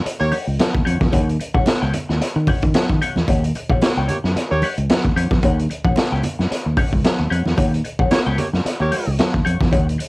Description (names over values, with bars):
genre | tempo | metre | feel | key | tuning
funk | 112 BPM | 4/4 | swing 56% on 16ths | Eb mixolydian | A4 = 438 Hz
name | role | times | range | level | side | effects
fingered electric bass | bass | 0.0-10.0 s | Bb1 to Eb3 | -20 LUFS | equal | transformer saturation
clean electric guitar | accompaniment | 0.1-10.0 s | G4 to G5 | -25 LUFS | left 4 dB | wah, analog chorus
raw garage drum kit | drums | 0.1-10.1 s | hi-hat, kick drum, snare drum | -19 LUFS | equal | cassette tape
clear horn section | second line | 0.2-0.4, 3.8-4.7, 8.1-9.1 s | Bb3 to Db5 | -21 LUFS | right 1 dB | none
congas | percussion | 0.3-10.1 s | none | -27 LUFS | right 2 dB | none
room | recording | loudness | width
little or no reverb | home recording on cassette, vinyl crackle | -16 LUFS | side -22 dB against mid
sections
0.0-10.1 A section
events
none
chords
0.0 Eb7#9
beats
0.05 0.59 | 1.13 1.67 2.21 2.74 | 3.28 3.82 4.35 4.89 | 5.43 5.97 6.50 7.04 | 7.58 8.12 8.65 9.19 | 9.73